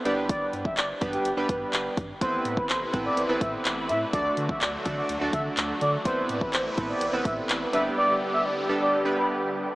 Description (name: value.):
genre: dance-pop.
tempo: 125 BPM.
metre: 4/4.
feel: straight.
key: A dorian.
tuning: A4 = 437 Hz.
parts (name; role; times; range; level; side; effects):
chorused retro synth keys; accompaniment; 0.0-9.7 s; G3 to D5; -29 LUFS; right 1 dB; sidechain pumping.
expressive synth lead; melody; 0.1-9.3 s; G4 to E5; -28 LUFS; equal; chorus, sidechain pumping.
round analog bass; bass; 0.1-7.9 s; G1 to D3; -37 LUFS; equal; sidechain pumping.
pop drum kit; drums; 0.1-7.8 s; handclaps, hi-hat, kick drum; -31 LUFS; equal; none.
filtered supersaw swell; sustained chords; 2.2-9.8 s; C3 to B4; -32 LUFS; equal; phaser, sidechain pumping.
room: wet huge ambient reverb, RT60 8.2 s.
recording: dreamy mix soaked in reverb, small speaker sound.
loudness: -24 LUFS.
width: side -20 dB against mid.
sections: 0.0-9.8 A section.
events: silent gap 8.0-9.8.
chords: 0.1 G; 2.2 Amadd9; 4.1 D; 6.1 Amadd9; 7.7 G.